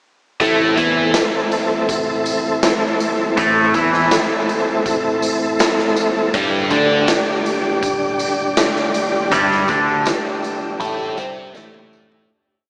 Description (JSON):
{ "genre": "psychedelic rock", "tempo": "81 BPM", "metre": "4/4", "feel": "straight", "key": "A minor", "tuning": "A4 = 438 Hz", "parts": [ { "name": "tonewheel organ", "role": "sustained chords", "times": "0.4-12.3 s", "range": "D3 to E5", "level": "-22 LUFS", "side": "equal", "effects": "chorus vibrato, fast rotary speaker" }, { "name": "cranked stack guitar", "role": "riff", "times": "0.4-12.3 s", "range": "G2 to E4", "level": "-21 LUFS", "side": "equal", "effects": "overdrive, phaser" }, { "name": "picked electric bass", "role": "bass", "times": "0.4-12.3 s", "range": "G1 to E2", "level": "-28 LUFS", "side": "equal", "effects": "none" }, { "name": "raw garage drum kit", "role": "drums", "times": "0.4-12.3 s", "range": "hi-hat, kick drum, snare drum, toms", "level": "-23 LUFS", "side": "equal", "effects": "none" }, { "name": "tambourine", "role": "percussion", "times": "0.4-12.1 s", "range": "none", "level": "-37 LUFS", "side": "equal", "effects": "none" } ], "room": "wet huge ambient reverb, RT60 4.0 s", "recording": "dreamy mix soaked in reverb, small speaker sound", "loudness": "-17 LUFS", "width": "mono", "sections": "0.4-12.3 riff", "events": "fade-out 9.3-12.3; drum fill 11.6-12.3", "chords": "0.4 Am; 6.3 G5", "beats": "| 0.41 1.15 1.89 2.64 | 3.38 4.12 4.86 5.61 | 6.35 7.09 7.83 8.58 | 9.32 10.06 10.81 11.55" }